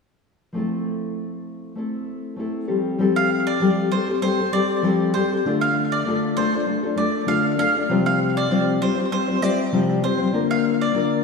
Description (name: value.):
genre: acoustic pop.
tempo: 98 BPM.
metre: 4/4.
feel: swing 55% on 16ths.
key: F major.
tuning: A4 = 441 Hz.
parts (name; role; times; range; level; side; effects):
nylon-string guitar; accompaniment; 0.5-11.2 s; C3 to C5; -20 LUFS; left 3 dB; none.
mandolin; arpeggios; 3.2-11.1 s; C5 to F5; -24 LUFS; right 3 dB; tape echo.
room: wet lush hall reverb, RT60 2.1 s.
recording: dreamy mix soaked in reverb, studio ambience.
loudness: -19 LUFS.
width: side -4 dB against mid.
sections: 0.5-3.0 A section; 3.0-11.2 B section.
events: none.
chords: 0.5 Fmaj7; 2.7 Fadd9; 5.4 Dm; 7.9 Csus4; 10.3 Bb/D.